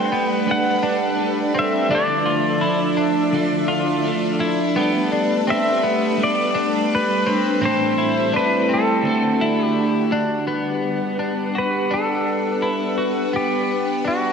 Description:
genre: dream pop.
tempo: 84 BPM.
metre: 4/4.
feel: straight.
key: G major.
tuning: A4 = 444 Hz.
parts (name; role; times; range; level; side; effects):
pedal steel guitar; melody; 0.0-14.3 s; F#4 to G5; -22 LUFS; equal; analog chorus, ping-pong delay.
twelve-string electric guitar; accompaniment; 0.0-11.0 s; A2 to B4; -26 LUFS; right 3 dB; harmonic tremolo, analog chorus.
string machine, violins; sustained chords; 0.0-14.3 s; F3 to F#5; -22 LUFS; equal; ensemble chorus.
twelve-string electric guitar; arpeggios; 0.0-14.3 s; B3 to F#4; -24 LUFS; left 2 dB; wide subtle chorus, ping-pong delay.
vibraphone with soft mallets; texture; 0.0-2.4, 7.3-10.8 s; D4 to D5; -32 LUFS; left 1 dB; none.
room: wet lush hall reverb, RT60 2.7 s.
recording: dreamy mix soaked in reverb.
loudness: -17 LUFS.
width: side -6 dB against mid.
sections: 0.0-10.5 A section; 10.5-14.3 B section.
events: none.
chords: 0.0 Gadd9; 1.9 Dmadd9; 4.8 Gadd9; 7.6 Am7; 9.0 D; 10.5 Gmaj7.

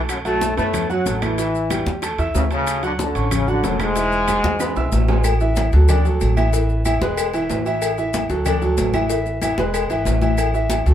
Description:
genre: latin, salsa.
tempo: 187 BPM.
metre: 4/4.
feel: straight.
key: unclear.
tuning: A4 = 437 Hz.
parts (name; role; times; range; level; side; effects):
clear concert grand piano; accompaniment; 0.0-10.9 s; D3 to E6; -23 LUFS; right 2 dB; none.
upright bass; bass; 0.0-10.9 s; E1 to F#2; -21 LUFS; equal; none.
bright trombone section; melody; 0.1-4.9 s; F#2 to E4; -21 LUFS; left 1 dB; none.
bongos and cowbell; percussion; 0.1-10.9 s; none; -30 LUFS; left 6 dB; none.
claves; percussion; 0.1-10.5 s; none; -35 LUFS; right 2 dB; none.
congas; percussion; 0.1-10.9 s; none; -27 LUFS; left 3 dB; none.
maracas; percussion; 0.1-10.9 s; none; -34 LUFS; left 5 dB; none.
timbales and agogo bells; percussion; 0.1-10.9 s; none; -28 LUFS; equal; none.
room: wet small room ambience, RT60 0.5 s.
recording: band playing live in one room.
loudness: -17 LUFS.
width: side -10 dB against mid.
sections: 0.0-5.2 A section; 5.2-10.9 B section.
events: drum fill 4.4-5.2.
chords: 0.1 B5; 1.4 A7; 2.7 Dmaj7; 4.0 E; 10.4 N.C..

